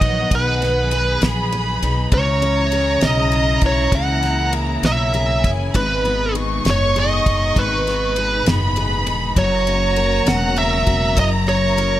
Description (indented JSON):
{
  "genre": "six-eight pop ballad",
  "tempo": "66 BPM (dotted quarters)",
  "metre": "6/8",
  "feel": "straight",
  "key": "unclear",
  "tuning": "A4 = 440 Hz",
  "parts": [
    { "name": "bluesy overdriven lead guitar", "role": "melody", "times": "0.0-12.0 s", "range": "B4 to F#5", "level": "-20 LUFS", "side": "right 2 dB", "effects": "distortion" },
    { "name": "warm studio violin section", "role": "second line", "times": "0.0-12.0 s", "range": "F#5 to C#6", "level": "-24 LUFS", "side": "left 1 dB", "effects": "none" },
    { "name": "picked steel-string acoustic guitar", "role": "accompaniment", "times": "0.0-12.0 s", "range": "G#2 to B4", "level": "-25 LUFS", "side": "left 4 dB", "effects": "none" },
    { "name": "warm studio string section", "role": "sustained chords", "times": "0.0-12.0 s", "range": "B2 to G#4", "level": "-27 LUFS", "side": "equal", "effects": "none" },
    { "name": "upright bass", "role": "bass", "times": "0.0-12.0 s", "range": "E1 to C#2", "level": "-21 LUFS", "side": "equal", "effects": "none" },
    { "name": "damped 70s drum kit", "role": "drums", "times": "0.0-11.9 s", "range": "kick drum, ride cymbal, snare drum", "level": "-21 LUFS", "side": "equal", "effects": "none" }
  ],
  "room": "small room ambience",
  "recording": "none",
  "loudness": "-15 LUFS",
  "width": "side -13 dB against mid",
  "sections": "0.0-12.0 A section",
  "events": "none",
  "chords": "0.0 B; 2.1 C#m; 5.8 G#m; 9.4 F#"
}